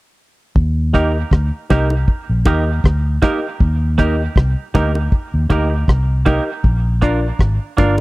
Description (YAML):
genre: roots reggae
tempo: 79 BPM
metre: 4/4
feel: straight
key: Eb major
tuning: A4 = 440 Hz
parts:
  - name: vintage muted fingered electric bass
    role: bass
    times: 0.6-8.0 s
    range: G1 to Eb2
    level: -16 LUFS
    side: equal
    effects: none
  - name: cloth-damped thuddy drum kit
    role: drums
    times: 0.6-8.0 s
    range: hi-hat, kick drum, rim click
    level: -15 LUFS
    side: equal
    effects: none
  - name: semi-hollow electric guitar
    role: accompaniment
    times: 0.9-8.0 s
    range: Bb3 to Bb4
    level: -23 LUFS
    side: right 6 dB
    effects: spring reverb, tape echo
  - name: reed electric piano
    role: stabs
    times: 0.9-8.0 s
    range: D4 to Eb5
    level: -20 LUFS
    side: left 1 dB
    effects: none
  - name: bongos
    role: percussion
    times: 1.7-8.0 s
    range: none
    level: -22 LUFS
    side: right 2 dB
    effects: none
room: little or no reverb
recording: dry, close 1970s-style studio recording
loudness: -14 LUFS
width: side -20 dB against mid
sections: 0.6-8.0 A section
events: none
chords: 0.6 Eb; 6.6 Bb